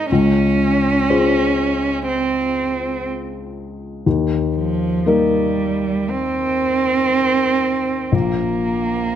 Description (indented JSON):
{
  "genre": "neoclassical piano and strings",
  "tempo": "60 BPM",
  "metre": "4/4",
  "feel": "rubato",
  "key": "unclear",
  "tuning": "A4 = 440 Hz",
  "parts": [
    { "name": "warm cello", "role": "second line", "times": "0.0-9.2 s", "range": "F3 to Eb4", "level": "-18 LUFS", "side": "right 3 dB", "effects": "none" },
    { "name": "felt-muted upright piano", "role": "accompaniment", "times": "0.0-9.2 s", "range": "Bb1 to C5", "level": "-20 LUFS", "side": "left 3 dB", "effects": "none" }
  ],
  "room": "moderate large studio reverb, RT60 1.4 s",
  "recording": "none",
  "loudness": "-16 LUFS",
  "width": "side -9 dB against mid",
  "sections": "0.0-9.2 A section",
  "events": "none",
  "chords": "0.1 Dbmaj7; 4.1 Eb5; 8.1 N.C."
}